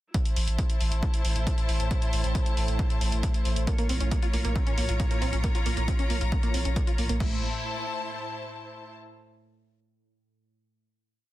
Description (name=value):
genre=driving peak-time techno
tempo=136 BPM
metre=4/4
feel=straight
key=A phrygian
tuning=A4 = 441 Hz
part: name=deep dark ambient pad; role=drone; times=0.8-7.2 s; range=A2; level=-38 LUFS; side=equal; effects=chorus, built-in reverb, sidechain pumping
part: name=electronic kick drum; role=drums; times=0.1-7.3 s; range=none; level=-27 LUFS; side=equal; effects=none
part: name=techno drum kit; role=drums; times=0.1-7.3 s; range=crash cymbal, hi-hat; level=-37 LUFS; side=equal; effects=sidechain pumping on hats, sidechain pumping on cymbals
part: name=rich studio string section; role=texture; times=0.1-8.9 s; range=E4 to Bb5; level=-34 LUFS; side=left 2 dB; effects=sidechain pumping
part: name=saturated sub bass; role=bass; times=0.4-7.4 s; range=A1 to Bb1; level=-28 LUFS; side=equal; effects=sidechain pumping, low-pass filter
part: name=tight sequenced synth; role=riff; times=3.7-7.4 s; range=A3 to F4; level=-35 LUFS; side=right 2 dB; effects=chorus, tube saturation, sidechain pumping, tape echo
room=digital ambience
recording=dense, heavily limited modern master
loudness=-24 LUFS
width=side -16 dB against mid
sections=0.1-7.2 groove; 7.2-9.0 final chord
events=none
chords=0.1 Am; 3.7 Bbm; 7.2 Am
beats=| 0.14 0.59 1.03 1.47 | 1.91 2.35 2.79 3.23 | 3.67 4.12 4.56 5.00 | 5.44 5.88 6.32 6.76 | 7.20 7.64 8.09 8.53